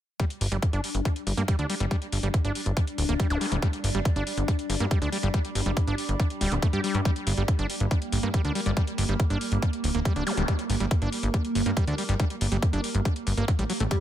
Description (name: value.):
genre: psychedelic trance.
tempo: 140 BPM.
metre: 4/4.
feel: straight.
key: G minor.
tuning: A4 = 439 Hz.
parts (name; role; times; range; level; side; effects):
evolving wavetable pad; sustained chords; 0.9-14.0 s; G3 to D4; -33 LUFS; right 1 dB; chorus, built-in reverb, phaser, sidechain pumping.
overdriven acid bass; riff; 0.2-14.0 s; F#3 to G4; -32 LUFS; moving between left 2 dB and right 4 dB; auto-pan, sidechain pumping, digital delay.
electronic hi-hat; drums; 0.2-14.0 s; none; -35 LUFS; left 1 dB; none.
electronic kick drum; drums; 0.2-14.0 s; none; -24 LUFS; equal; none.
plucky analog bass; bass; 0.4-13.9 s; D1 to G2; -26 LUFS; equal; none.
zap; sound effects; 3.3-3.4, 10.3-10.4 s; none; -37 LUFS; equal; none.
oud; melody; 13.9-14.0 s; G3; -29 LUFS; equal; phaser, sidechain pumping.
room: little or no reverb.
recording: none.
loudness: -24 LUFS.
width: side -11 dB against mid.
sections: 0.2-14.0 A section.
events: none.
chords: 0.2 G5.